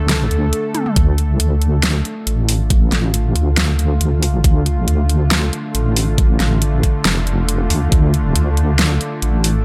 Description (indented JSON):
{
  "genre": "deep dubstep",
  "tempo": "138 BPM",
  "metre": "4/4",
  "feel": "swing 53% on 16ths, half-time",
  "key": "D minor",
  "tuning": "A4 = 440 Hz",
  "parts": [
    { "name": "bowed-like drone", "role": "sustained chords", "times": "0.0-9.6 s", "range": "D3 to A4", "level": "-26 LUFS", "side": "equal", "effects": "built-in reverb" },
    { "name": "deep soft wobble bass", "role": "bass", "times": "0.0-9.6 s", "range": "F1 to D2", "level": "-18 LUFS", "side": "equal", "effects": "chorus, tube saturation" },
    { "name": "dubstep drum kit", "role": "drums", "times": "0.1-9.5 s", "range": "hi-hat, snare drum, toms", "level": "-22 LUFS", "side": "equal", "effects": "overdrive" },
    { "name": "electronic kick drum", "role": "drums", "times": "1.0-8.0 s", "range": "none", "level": "-16 LUFS", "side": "equal", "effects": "overdrive" }
  ],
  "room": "light reverb, digital ambience",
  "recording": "none",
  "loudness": "-16 LUFS",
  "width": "mono",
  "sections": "0.0-9.6 A section",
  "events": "break 0.5-1.0; drum fill 0.7",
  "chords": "0.0 Dm"
}